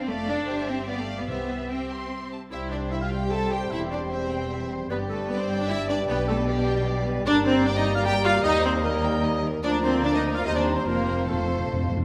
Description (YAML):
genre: quick classical-period movement for symphony orchestra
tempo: 151 BPM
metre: 3/4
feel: straight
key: C major, Bb major from 7.3 s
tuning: A4 = 440 Hz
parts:
  - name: warm studio violin section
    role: melody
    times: 0.0-11.9 s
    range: G4 to C6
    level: -40 LUFS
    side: equal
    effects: none
  - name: warm studio violin section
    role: second line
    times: 0.0-11.9 s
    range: G4 to A5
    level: -36 LUFS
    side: equal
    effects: none
  - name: rich studio viola section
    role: accompaniment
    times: 0.0-11.9 s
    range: G3 to E5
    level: -31 LUFS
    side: equal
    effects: none
  - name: dark studio double bass section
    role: bass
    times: 0.0-11.9 s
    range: E1 to Eb2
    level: -34 LUFS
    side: equal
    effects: none
  - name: warm studio cello section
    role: bass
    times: 0.0-11.9 s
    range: C2 to D4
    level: -34 LUFS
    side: equal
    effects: none
  - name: timpani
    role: percussion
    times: 1.3-1.9, 10.9-12.0 s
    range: F2 to C3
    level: -33 LUFS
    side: equal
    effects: none
  - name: large flute ensemble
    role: second line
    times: 2.5-11.9 s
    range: F5 to Bb5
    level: -38 LUFS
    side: equal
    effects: none
  - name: warm clarinet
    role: second line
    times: 2.5-11.9 s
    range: G4 to A5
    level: -35 LUFS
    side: equal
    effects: none
  - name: warm oboe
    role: second line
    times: 2.5-11.9 s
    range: C5 to Eb5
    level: -37 LUFS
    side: equal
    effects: none
  - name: mellow bassoon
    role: accompaniment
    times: 2.5-11.9 s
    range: F3 to G3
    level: -34 LUFS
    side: equal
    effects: none
  - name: mellow French horn section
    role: sustained chords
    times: 2.5-11.9 s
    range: F3 to D4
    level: -37 LUFS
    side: equal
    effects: none
room: wet recital hall reverb, RT60 1.6 s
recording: none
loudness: -25 LUFS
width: mono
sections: 0.0-2.5 A section; 2.5-12.0 B section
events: timpani fill 10.9-12.0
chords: 0.1 Dm/F; 0.5 C/G; 0.9 G7; 1.3 C; 3.7 C/E; 4.9 G; 6.1 G/B; 7.3 Gm; 8.4 Eb; 9.6 Bb/D; 10.4 Cm7/Eb; 10.9 F